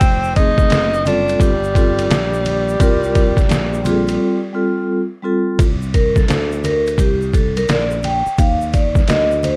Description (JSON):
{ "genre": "hip hop, jazz-hop", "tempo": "86 BPM", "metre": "4/4", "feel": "swing 65% on 16ths", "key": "unclear", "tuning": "A4 = 440 Hz", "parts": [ { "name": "breathy tenor saxophone", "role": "melody", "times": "0.0-4.9 s", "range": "G3 to Eb4", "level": "-21 LUFS", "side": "equal", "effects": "none" }, { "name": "sustaining fretless electric bass", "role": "bass", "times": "0.0-9.6 s", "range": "F1 to Eb2", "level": "-24 LUFS", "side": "equal", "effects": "lush chorus" }, { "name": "trip hop sampler-style drum kit", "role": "drums", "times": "0.0-9.6 s", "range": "hi-hat, kick drum, ride cymbal, snare drum", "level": "-20 LUFS", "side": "equal", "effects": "none" }, { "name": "egg shaker and congas", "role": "percussion", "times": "0.0-9.6 s", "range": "none", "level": "-32 LUFS", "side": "equal", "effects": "none" }, { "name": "vibraphone with medium mallets", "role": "accompaniment", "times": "0.3-9.6 s", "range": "G3 to G5", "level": "-21 LUFS", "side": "equal", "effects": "none" } ], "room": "little or no reverb", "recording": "none", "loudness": "-16 LUFS", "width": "mono", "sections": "0.0-5.6 A section; 5.6-9.6 B section", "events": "break 4.2-5.6; vibraphone solo 5.6-9.6", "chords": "0.0 F7; 0.7 F#dim7; 1.4 Gm7; 2.8 C7sus4; 4.2 G9sus4; 5.6 Csus2; 8.4 Eb5" }